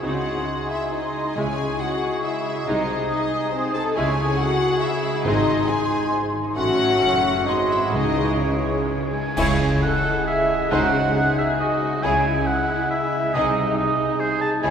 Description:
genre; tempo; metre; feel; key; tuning
classical, dramatic, fast romantic movement for symphony orchestra; 138 BPM; 3/4; rubato; C# minor; A4 = 440 Hz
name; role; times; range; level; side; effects
warm symphonic violin section; melody; 0.0-14.7 s; B#4 to A5; -28 LUFS; left 4 dB; none
clear clarinet; second line; 0.0-14.7 s; C#4 to F#4; -31 LUFS; left 2 dB; none
clear oboe; second line; 0.0-14.7 s; F#4 to A5; -27 LUFS; right 2 dB; none
mellow hollow flute section; second line; 0.0-14.7 s; B#4 to D#6; -29 LUFS; right 1 dB; none
warm symphonic violin section; second line; 0.0-14.7 s; B#3 to A4; -31 LUFS; left 2 dB; none
rich studio viola section; accompaniment; 0.0-14.7 s; E3 to A4; -31 LUFS; right 1 dB; none
warm bassoon; accompaniment; 0.0-14.7 s; G#3 to A3; -30 LUFS; right 1 dB; none
dark French horn section; sustained chords; 0.0-14.7 s; G#3 to A4; -28 LUFS; left 1 dB; none
concert harp; arpeggios; 0.0-14.7 s; G#2 to D#6; -30 LUFS; left 4 dB; none
clear chamber cello section; bass; 0.0-14.7 s; F#2 to C#3; -31 LUFS; right 1 dB; none
warm studio double bass section; bass; 0.0-14.7 s; F#1 to C#2; -30 LUFS; right 3 dB; none
timpani; percussion; 1.4-2.0, 5.2-5.9, 7.9-8.6, 10.7-11.3 s; G#2 to C#3; -34 LUFS; equal; none
cymbal swell, clash cymbals and concert bass drum; percussion; 6.6-10.2 s; none; -33 LUFS; equal; none
warm trumpet section; stabs; 9.4-14.7 s; G#4 to C#5; -33 LUFS; right 2 dB; none
room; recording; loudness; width
wet cathedral reverb, RT60 4.2 s; recorded in a church or concert hall; -19 LUFS; side -7 dB against mid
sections
0.0-9.4 A section; 9.4-14.7 B section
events
band accent 9.4-9.8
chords
0.0 G#7/C#; 1.4 C#m; 2.7 G#/B#; 4.0 C#m; 5.3 G#; 6.6 F#m/A; 7.5 G#7; 7.9 C#m; 10.7 G#7/C#; 12.0 C#m; 13.3 G#/B#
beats
| 0.03 0.47 0.92 | 1.36 1.80 2.24 | 2.67 3.11 3.54 | 3.97 4.40 4.82 | 5.25 5.68 6.12 | 6.56 7.01 7.47 | 7.94 8.41 8.89 | 9.37 9.82 10.27 | 10.71 11.16 11.60 | 12.03 12.47 12.90 | 13.34 13.77 14.20 | 14.63

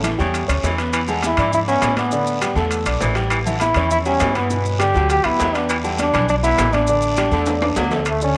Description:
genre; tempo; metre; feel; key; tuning
latin, salsa; 202 BPM; 4/4; straight; unclear; A4 = 438 Hz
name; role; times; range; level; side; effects
bright trombone; melody; 0.0-8.4 s; A3 to G4; -22 LUFS; equal; tape echo
dark grand piano; accompaniment; 0.0-8.4 s; B2 to D6; -26 LUFS; equal; none
upright bass; bass; 0.0-8.4 s; A1 to A2; -25 LUFS; equal; none
claves; percussion; 0.0-8.2 s; none; -37 LUFS; equal; none
congas; percussion; 0.0-8.4 s; none; -34 LUFS; equal; none
guiro; percussion; 0.0-8.4 s; none; -35 LUFS; equal; none
maracas; percussion; 0.0-8.4 s; none; -37 LUFS; equal; none
timbales; percussion; 0.0-8.2 s; none; -29 LUFS; equal; none
raspy baritone saxophone; second line; 0.2-7.9 s; C#3 to F#3; -29 LUFS; equal; none
room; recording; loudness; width
moderate echo chamber reverb, RT60 2.3 s; none; -19 LUFS; mono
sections
0.0-8.1 A section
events
drum fill 7.5-8.1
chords
0.0 A7; 0.9 E7; 2.1 A7sus4; 3.3 A7; 4.5 Gmaj7; 5.7 Em7; 6.9 A7sus4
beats
0.04 0.34 0.64 | 0.94 1.23 1.53 1.83 | 2.13 2.42 2.72 3.02 | 3.31 3.61 3.91 4.21 | 4.50 4.80 5.10 5.39 | 5.69 5.99 6.29 6.58 | 6.88 7.18 7.47 7.77 | 8.07 8.36

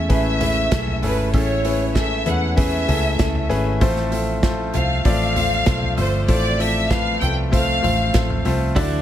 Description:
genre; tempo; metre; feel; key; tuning
piano-driven pop; 97 BPM; 4/4; straight; unclear; A4 = 440 Hz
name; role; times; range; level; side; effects
warm studio violin section; melody; 0.0-8.4 s; B4 to G5; -23 LUFS; equal; none
clear concert grand piano; accompaniment; 0.0-9.0 s; A2 to D5; -23 LUFS; left 2 dB; none
mellow tonewheel organ; sustained chords; 0.0-9.0 s; E3 to D4; -32 LUFS; right 1 dB; chorus vibrato, wide subtle chorus
vintage muted fingered electric bass; bass; 0.0-9.0 s; G1 to E2; -23 LUFS; equal; none
natural country drum kit; drums; 0.1-8.9 s; hi-hat, kick drum, snare drum, toms; -22 LUFS; equal; none
twelve-string electric guitar; riff; 8.8-9.0 s; D3 to E4; -26 LUFS; right 4 dB; none
room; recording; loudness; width
small room ambience; none; -17 LUFS; side -11 dB against mid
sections
0.0-9.0 A section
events
none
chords
0.0 Amaj7; 3.8 F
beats
0.10 0.72 | 1.34 1.96 2.58 3.20 | 3.81 4.43 5.05 5.67 | 6.29 6.91 7.53 8.15 | 8.77

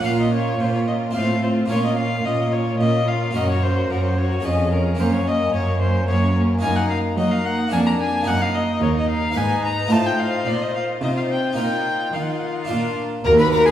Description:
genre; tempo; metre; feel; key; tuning
classical, baroque-style concerto movement with solo episodes; 110 BPM; 3/4; straight; Bb minor, Eb minor from 6.6 s; A4 = 440 Hz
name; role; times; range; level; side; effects
rich violin; melody; 0.0-13.7 s; Ab4 to Bb5; -24 LUFS; left 3 dB; none
harpsichord; accompaniment; 0.0-13.7 s; Eb2 to C5; -26 LUFS; right 1 dB; none
rich chamber viola section; accompaniment; 0.0-13.6 s; Bb3 to Gb4; -28 LUFS; right 2 dB; none
rich chamber violin section; melody; 0.1-13.7 s; Ab4 to Cb6; -32 LUFS; left 5 dB; none
rich chamber violin section; second line; 0.1-13.7 s; Db4 to Cb5; -26 LUFS; left 2 dB; none
rich chamber cello section; bass; 0.1-13.7 s; Eb2 to Gb3; -22 LUFS; right 1 dB; none
rich chamber double bass section; bass; 13.2-13.7 s; Eb2; -25 LUFS; right 4 dB; none
room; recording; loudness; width
wet recital hall reverb, RT60 1.4 s; heard from further back in the room; -18 LUFS; side -11 dB against mid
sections
0.1-13.2 A section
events
none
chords
0.1 Bbm; 1.2 F/A; 1.7 Bbm; 3.4 Gb; 4.5 Db/F; 5.0 Gb; 6.6 Ebm/Gb; 7.7 Bb7/F; 8.3 Ebm/Gb; 9.4 Abm; 9.9 F7/A; 11.6 Bbsus4; 12.7 Bb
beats
| 0.06 0.61 1.16 | 1.71 2.26 2.81 | 3.35 3.90 4.45 | 5.00 5.54 6.09 | 6.63 7.18 7.73 | 8.27 8.82 9.37 | 9.91 10.46 11.02 | 11.57 12.13 12.69 | 13.25

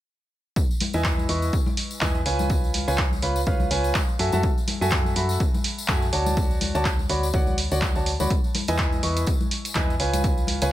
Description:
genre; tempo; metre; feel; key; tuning
piano house; 124 BPM; 4/4; swing 57% on 16ths; E major; A4 = 440 Hz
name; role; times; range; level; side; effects
electronic kick drum; drums; 0.6-10.3 s; none; -24 LUFS; equal; none
tambourine and congas; percussion; 0.6-10.7 s; none; -33 LUFS; left 5 dB; none
punchy analog drum machine; drums; 0.8-10.7 s; handclaps, hi-hat; -28 LUFS; right 1 dB; none
clear upright piano; riff; 0.9-10.7 s; E4 to C#6; -26 LUFS; right 1 dB; sidechain pumping, dub echo
solid FM bass; bass; 0.9-10.7 s; C#2 to F#2; -26 LUFS; equal; sidechain pumping
room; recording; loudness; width
little or no reverb; none; -21 LUFS; side -14 dB against mid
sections
0.6-10.7 A section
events
none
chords
0.6 Emaj7; 2.5 C#7; 4.2 F#m9; 6.1 Dmaj7; 8.3 Emaj7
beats
| 0.56 1.05 1.53 2.02 | 2.50 2.98 3.47 3.95 | 4.43 4.92 5.40 5.89 | 6.37 6.85 7.34 7.82 | 8.30 8.79 9.27 9.76 | 10.24

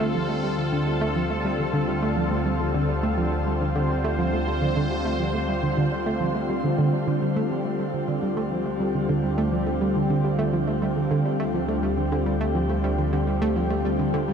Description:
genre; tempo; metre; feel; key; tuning
ambient, sequencer-driven space music; 104 BPM; 4/4; straight; D minor; A4 = 440 Hz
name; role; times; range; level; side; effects
sweeping resonant pad; sustained chords; 0.0-14.3 s; D3 to C5; -25 LUFS; left 1 dB; chorus
analog pluck; riff; 0.0-14.3 s; D3 to A3; -26 LUFS; right 2 dB; chorus, tape echo
fat analog bass; bass; 0.0-14.3 s; D2; -30 LUFS; equal; none
room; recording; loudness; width
wet shimmer reverb, RT60 8.0 s; dark, warm production; -22 LUFS; side -7 dB against mid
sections
0.0-14.3 A section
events
filter sweep on synth arpeggio sound 0.0-14.3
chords
0.0 Dm7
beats
| 0.15 0.73 1.30 1.88 | 2.46 3.03 3.61 4.19 | 4.76 5.34 5.92 6.50 | 7.07 7.65 8.23 8.80 | 9.38 9.96 10.53 11.11 | 11.69 12.26 12.84 13.42 | 13.99

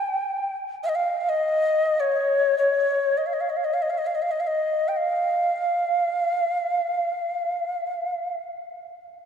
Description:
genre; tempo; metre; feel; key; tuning
world meditative, free-time meditation music; free time; none; none; unclear; A4 = 440 Hz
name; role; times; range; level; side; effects
breathy mellow Native American-style cedar flute; solo; 0.0-8.4 s; Db5 to G5; -22 LUFS; equal; none
room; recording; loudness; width
wet huge ambient reverb, RT60 4.1 s; dark, warm production; -22 LUFS; side -7 dB against mid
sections
0.0-9.3 A section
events
none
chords
none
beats
free time

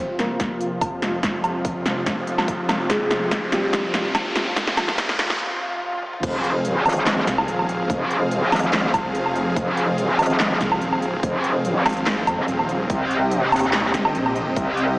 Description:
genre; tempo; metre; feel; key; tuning
heavy wobble dubstep; 144 BPM; 4/4; half-time; F minor; A4 = 444 Hz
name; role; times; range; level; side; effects
felt-muted upright piano; melody; 0.0-4.1 s; G3 to C5; -27 LUFS; equal; vintage 12-bit sampler grit, low-pass filter, tape echo
supersaw chords; sustained chords; 0.0-15.0 s; F2 to F5; -25 LUFS; equal; vintage 12-bit sampler grit, sidechain pumping, low-pass filter
riser, swell and sub drop; sound effects; 0.0-7.9 s; none; -30 LUFS; equal; none
big-room dance drum kit; drums; 0.2-14.9 s; crash cymbal, handclaps, hi-hat, snare drum, toms, woodblock; -23 LUFS; equal; none
electronic kick drum; drums; 0.4-14.7 s; none; -29 LUFS; equal; none
metallic wobble bass; bass; 6.2-15.0 s; F1 to Eb2; -21 LUFS; equal; chorus, overdrive
snarling distorted saw bass; bass; 7.3-14.5 s; Eb1 to F2; -27 LUFS; equal; distortion, overdrive
room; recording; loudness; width
wet lush hall reverb, RT60 2.5 s; dreamy mix soaked in reverb, high-pass filter, small speaker sound; -19 LUFS; side -23 dB against mid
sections
0.0-6.2 A section; 6.2-15.0 B section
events
build-up 0.0-6.2; drum fill 0.0-5.4, 5.9-6.2; riser 0.0-5.4; filter sweep on supersaw synth 0.0-6.2; filter sweep on felt piano 0.0-6.2; filter sweep 0.0-6.2; break 5.4-6.2; swell 5.4-6.2; drop 6.2-15.0; impact 6.2-7.9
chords
0.0 F5; 6.2 Fm; 12.9 Cm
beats
0.40 0.81 | 1.23 1.65 2.06 2.48 | 2.90 3.31 3.73 4.15 | 4.57 4.98 5.40 5.82 | 6.23 6.65 7.07 7.48 | 7.90 8.31 8.73 9.15 | 9.56 9.98 10.40 10.81 | 11.23 11.65 12.06 12.48 | 12.90 13.31 13.73 14.15 | 14.56 14.98

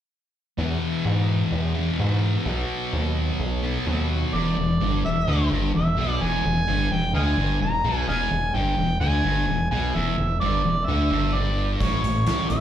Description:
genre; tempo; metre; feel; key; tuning
blues rock power trio and southern rock; 128 BPM; 4/4; straight; unclear; A4 = 440 Hz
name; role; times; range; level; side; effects
thick fuzz guitar; riff; 0.6-12.6 s; E2 to B3; -25 LUFS; left 1 dB; distortion, slapback echo
gritty driven synth bass; bass; 0.6-12.6 s; E1 to G#2; -25 LUFS; equal; none
mellow harmonica; melody; 4.3-12.6 s; C#5 to A#5; -26 LUFS; right 1 dB; overdrive, slapback echo
oversized low-tuned drum kit; drums; 11.8-12.6 s; hi-hat, kick drum, snare drum; -27 LUFS; equal; none
room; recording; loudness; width
studio reverb; live gig heard through the venue's PA, club ambience; -21 LUFS; side -10 dB against mid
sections
0.6-4.3 A section; 4.3-12.6 B section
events
none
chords
0.6 E; 2.5 B; 4.3 E7; 11.8 A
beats
| 0.58 1.05 1.52 1.99 | 2.46 2.93 3.40 3.87 | 4.34 4.81 5.28 5.74 | 6.21 6.68 7.14 7.61 | 8.08 8.54 9.01 9.47 | 9.94 10.40 10.87 11.34 | 11.80 12.27

